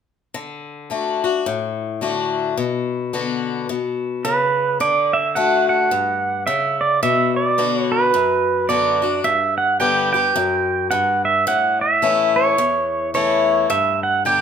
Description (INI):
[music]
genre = country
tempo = 108 BPM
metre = 4/4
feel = swing 60% on 8ths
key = D major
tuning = A4 = 440 Hz
[part]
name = picked swing-style acoustic guitar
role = accompaniment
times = 0.3-14.4 s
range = E2 to G4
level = -21 LUFS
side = left 7 dB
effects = none
[part]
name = pedal steel guitar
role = melody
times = 4.2-14.4 s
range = B4 to G5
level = -17 LUFS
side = right 4 dB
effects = none
[sound]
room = moderate large studio reverb, RT60 0.9 s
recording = minimal, uncompressed stereo recording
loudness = -16 LUFS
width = side -7 dB against mid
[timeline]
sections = 0.3-4.8 A section; 4.8-14.4 B section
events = none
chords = 0.3 D; 2.6 Bm; 4.8 D; 7.0 Bm; 9.3 G; 11.5 A; 13.7 G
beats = | 0.35 0.91 1.46 2.02 | 2.58 3.13 3.69 4.25 | 4.80 5.36 5.92 6.47 | 7.03 7.59 8.14 8.70 | 9.25 9.81 10.36 10.92 | 11.47 12.03 12.59 13.14 | 13.70 14.25